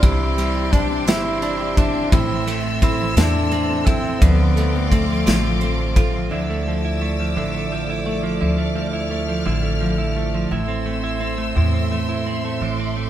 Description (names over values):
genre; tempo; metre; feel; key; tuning
six-eight pop ballad; 57 BPM (dotted quarters); 6/8; straight; unclear; A4 = 441 Hz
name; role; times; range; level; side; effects
warm duduk; second line; 0.0-6.0 s; A3 to E4; -24 LUFS; left 2 dB; none
direct-recorded clean electric guitar; accompaniment; 0.0-13.1 s; A2 to F4; -24 LUFS; right 5 dB; none
rich chamber string section; sustained chords; 0.0-13.1 s; G4 to F6; -28 LUFS; equal; none
picked steel-string acoustic guitar; arpeggios; 0.0-13.1 s; E3 to G4; -27 LUFS; left 4 dB; none
upright bass; bass; 0.0-13.1 s; G1 to E2; -23 LUFS; equal; none
modern studio drum kit; drums; 0.0-6.1 s; kick drum, ride cymbal, snare drum; -20 LUFS; equal; none
room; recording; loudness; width
moderate stone room reverb, RT60 1.1 s; band playing live in one room; -17 LUFS; side -12 dB against mid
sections
0.0-6.3 A section; 6.3-13.1 B section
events
none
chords
0.0 Cadd9; 2.1 Am; 4.2 Dm7; 6.3 Dmadd9; 10.5 Am